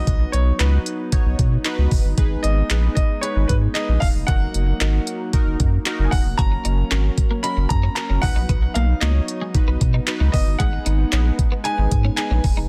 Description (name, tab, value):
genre	dance-pop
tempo	114 BPM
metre	4/4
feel	straight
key	unclear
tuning	A4 = 439 Hz
part	clear baby grand piano	melody	0.0-12.7 s	B4 to B5	-30 LUFS	equal	delay
part	warm analog keys	accompaniment	0.0-12.6 s	C#4 to C#5	-33 LUFS	equal	chorus, phaser, sidechain pumping
part	warm analog pad	sustained chords	0.0-12.7 s	F#3 to D#4	-33 LUFS	equal	chorus, sidechain pumping
part	saturated sub bass	bass	0.0-12.7 s	E1 to B2	-21 LUFS	equal	sidechain pumping
part	smooth R&B drum kit	drums	0.1-12.6 s	handclaps, hi-hat, kick drum	-23 LUFS	equal	none
part	twelve-string electric guitar	riff	6.4-12.7 s	G#3 to F#4	-33 LUFS	equal	lush chorus
room	little or no reverb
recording	dense, heavily limited modern master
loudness	-20 LUFS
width	mono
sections	0.0-12.7 A section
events	none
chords	0.0 B; 2.2 G#m; 4.3 D#m/F#; 6.4 F#; 8.2 B; 10.6 G#m